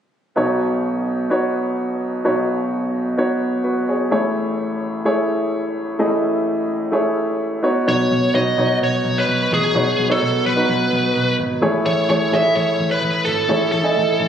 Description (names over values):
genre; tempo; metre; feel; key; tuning
pop; 128 BPM; 4/4; straight; B mixolydian; A4 = 441 Hz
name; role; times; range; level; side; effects
clear grand piano; accompaniment; 0.4-14.3 s; A1 to G#5; -18 LUFS; equal; none
biting lead guitar; melody; 7.9-14.3 s; G#4 to E5; -19 LUFS; equal; overdrive
vintage muted picked electric bass; bass; 7.9-14.3 s; G#1 to B1; -24 LUFS; equal; none
room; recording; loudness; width
moderate plate reverb, RT60 3.1 s; recorded on a phone in the room, club reverb, compression; -17 LUFS; side -8 dB against mid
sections
0.4-7.9 A section; 7.9-14.3 B section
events
none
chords
0.4 Badd9; 4.1 Amaj7; 7.6 Badd9; 11.6 Amaj7